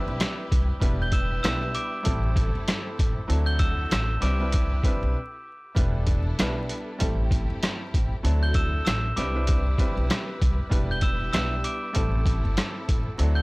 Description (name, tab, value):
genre	hip hop, boom-bap hip-hop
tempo	97 BPM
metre	4/4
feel	swing 59% on 16ths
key	unclear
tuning	A4 = 439 Hz
part	glockenspiel with hard plastic mallets	melody	0.0-13.4 s	D6 to G7	-32 LUFS	equal	high-pass filter, low-pass filter, analog delay
part	bright upright piano	accompaniment	0.0-13.4 s	F#3 to B4	-33 LUFS	right 1 dB	cassette tape, high-pass filter, low-pass filter
part	clear symphonic string section	stabs	0.0-13.4 s	C4 to B4	-39 LUFS	left 1 dB	high-pass filter, low-pass filter, analog delay
part	upright bass	bass	0.1-13.4 s	E1 to D2	-26 LUFS	equal	tube saturation
part	trip hop sampler-style drum kit	drums	0.2-13.4 s	hi-hat, kick drum, rim click, snare drum	-25 LUFS	equal	none
room	little or no reverb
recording	dry, gritty hardware recording, vinyl crackle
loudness	-22 LUFS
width	side -25 dB against mid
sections	0.0-13.4 A section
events	break 5.1-5.8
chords	0.0 Cmaj9; 0.8 Em7; 2.1 Am7; 3.3 D9; 4.2 Cmaj9; 5.8 Em7; 7.0 Am7; 8.2 D9; 9.2 Cmaj9; 10.7 Em7; 11.9 Am7